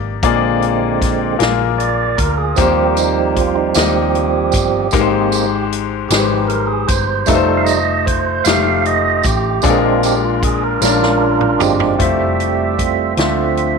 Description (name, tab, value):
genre	slow gospel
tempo	51 BPM (dotted quarters)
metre	6/8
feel	straight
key	unclear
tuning	A4 = 440 Hz
part	clear baby grand piano	accompaniment	0.0-13.8 s	Ab2 to Eb5	-17 LUFS	left 13 dB	none
part	hollow-body short-scale fingered electric bass	bass	0.0-13.8 s	F1 to Eb2	-22 LUFS	equal	none
part	tonewheel organ	sustained chords	0.2-13.8 s	D3 to F5	-17 LUFS	right 11 dB	fast rotary speaker, overdrive
part	swinging big-band drum kit	drums	0.2-13.8 s	hi-hat, kick drum, snare drum, toms	-20 LUFS	equal	none
part	tambourine	percussion	2.6-12.0 s	none	-24 LUFS	right 16 dB	none
room	moderate echo chamber reverb, RT60 2.1 s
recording	1960s-style stereo with parts hard left and right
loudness	-13 LUFS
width	side -5 dB against mid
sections	0.0-12.0 A section; 12.0-13.8 B section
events	tonewheel organ solo 0.0-12.0, 12.0-13.8; drum fill 10.8-12.0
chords	0.2 Bb7; 2.6 Eb6; 4.9 Abmaj7; 7.3 F7; 9.6 Bb7; 12.0 Fmaj7; 13.2 Dm7